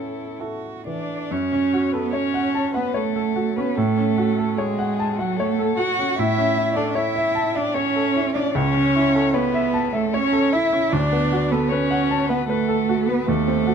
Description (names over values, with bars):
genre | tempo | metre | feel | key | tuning
classical, slow romantic movement for piano trio | 76 BPM | 3/4 | rubato | F# minor | A4 = 440 Hz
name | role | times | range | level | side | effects
muted violin | melody | 0.0-13.7 s | F#4 to F#5 | -26 LUFS | left 12 dB | none
muted cello | second line | 0.0-13.7 s | F#3 to F#4 | -22 LUFS | right 5 dB | none
clear baby grand piano | accompaniment | 0.0-13.7 s | C#2 to A5 | -23 LUFS | equal | none
room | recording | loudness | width
light reverb | close, detailed microphones | -18 LUFS | side -7 dB against mid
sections
0.0-1.3 A section; 1.3-13.7 B section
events
none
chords
0.0 A; 1.3 F#m; 3.8 F#m/A; 6.2 A; 8.5 A/C#; 10.9 Bm7/D